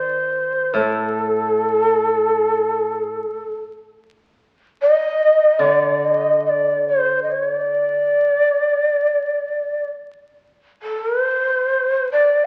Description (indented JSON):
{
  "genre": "japanese traditional, Japanese chamber music",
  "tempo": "64-75 BPM",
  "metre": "4/4",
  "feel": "rubato",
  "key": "unclear",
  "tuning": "A4 = 438 Hz",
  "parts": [
    { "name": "breathy mellow shakuhachi", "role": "melody", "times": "0.0-12.5 s", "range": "A4 to Eb5", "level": "-19 LUFS", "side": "equal", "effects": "none" },
    { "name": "koto", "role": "accompaniment", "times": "0.0-8.1 s", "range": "A2 to Eb3", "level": "-29 LUFS", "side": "equal", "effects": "none" }
  ],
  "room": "wet recital hall reverb, RT60 1.4 s",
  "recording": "very old 78 rpm record, vinyl crackle",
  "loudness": "-19 LUFS",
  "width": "mono",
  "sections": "0.0-10.8 A section; 10.8-12.5 B section",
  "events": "none",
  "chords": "none"
}